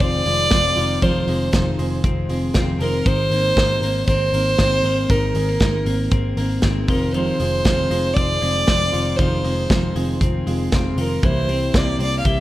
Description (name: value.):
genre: jangly indie pop.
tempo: 118 BPM.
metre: 4/4.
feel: straight.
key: F dorian.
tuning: A4 = 441 Hz.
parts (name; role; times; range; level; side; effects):
warm violin; melody; 0.0-12.4 s; Bb4 to F5; -21 LUFS; right 1 dB; none.
picked steel-string acoustic guitar; accompaniment; 0.0-12.4 s; F2 to Bb4; -26 LUFS; right 3 dB; tube saturation.
twelve-string electric guitar; arpeggios; 0.0-12.4 s; Eb3 to G4; -26 LUFS; left 4 dB; none.
vintage muted picked electric bass; bass; 0.0-12.4 s; F1 to C2; -23 LUFS; equal; none.
modern studio drum kit; drums; 0.0-12.4 s; hi-hat, kick drum, snare drum; -22 LUFS; equal; none.
room: light reverb, small room ambience.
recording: rough home demo mix.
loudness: -16 LUFS.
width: side -15 dB against mid.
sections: 0.0-12.4 A section.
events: none.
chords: 0.0 Fm7; 3.1 Abadd9; 6.9 Fm7; 11.2 C7.